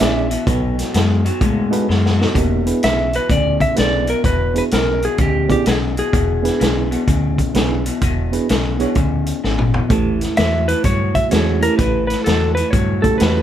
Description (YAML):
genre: electric blues shuffle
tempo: 127 BPM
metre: 4/4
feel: swing 66% on 8ths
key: E mixolydian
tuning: A4 = 441 Hz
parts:
  - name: clean lap steel guitar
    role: melody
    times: 0.0-6.9, 10.4-13.4 s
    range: G4 to E5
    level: -20 LUFS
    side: equal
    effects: none
  - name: bright reed electric piano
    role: accompaniment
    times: 0.0-13.4 s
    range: G#3 to D5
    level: -21 LUFS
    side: right 6 dB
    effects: fast tremolo
  - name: electric guitar through a small old amp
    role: riff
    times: 0.0-13.4 s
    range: E2 to G#3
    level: -22 LUFS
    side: left 4 dB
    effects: spring reverb
  - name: vintage muted fingered electric bass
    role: bass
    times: 0.0-13.4 s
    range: E1 to A2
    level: -20 LUFS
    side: equal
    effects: none
  - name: vintage drum kit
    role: drums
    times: 0.0-13.4 s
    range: hi-hat, kick drum, snare drum, toms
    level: -20 LUFS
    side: equal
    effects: none
room: light reverb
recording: band playing live in one room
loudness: -14 LUFS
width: side -10 dB against mid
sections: 0.0-2.4 A section; 2.4-13.4 B section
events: electric slide guitar solo 0.0-2.4; drum fill 1.9-2.4, 9.4-9.9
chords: 0.5 B7; 2.4 E7; 9.9 A7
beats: 0.00 | 0.47 0.94 1.42 1.89 | 2.36 2.83 3.30 3.77 | 4.25 4.72 5.19 5.66 | 6.13 6.61 7.08 7.55 | 8.02 8.49 8.96 9.44 | 9.91 10.38 10.85 11.32 | 11.79 12.27 12.74 13.21